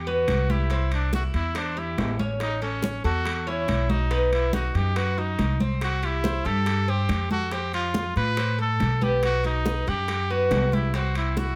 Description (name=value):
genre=latin, Cuban son and guajira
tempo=141 BPM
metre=4/4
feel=straight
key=unclear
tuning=A4 = 444 Hz
part: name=clear trumpet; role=melody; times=0.0-11.6 s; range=C#4 to B4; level=-31 LUFS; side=equal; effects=none
part: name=Cuban tres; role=arpeggios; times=0.0-11.6 s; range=B3 to F#5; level=-32 LUFS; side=equal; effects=none
part: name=upright bass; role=bass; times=0.0-11.5 s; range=A1 to A2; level=-28 LUFS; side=equal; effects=none
part: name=congas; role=percussion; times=0.1-11.6 s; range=none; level=-33 LUFS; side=equal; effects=none
part: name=bongos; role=percussion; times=0.3-11.6 s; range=none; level=-40 LUFS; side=equal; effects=none
part: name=timbales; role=percussion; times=0.3-11.4 s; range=none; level=-39 LUFS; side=equal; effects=none
room=light reverb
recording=none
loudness=-25 LUFS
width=mono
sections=0.0-11.6 A section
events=none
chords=0.0 Em; 0.7 C; 2.4 A; 4.1 B; 5.8 C; 7.5 F; 9.2 B; 10.9 C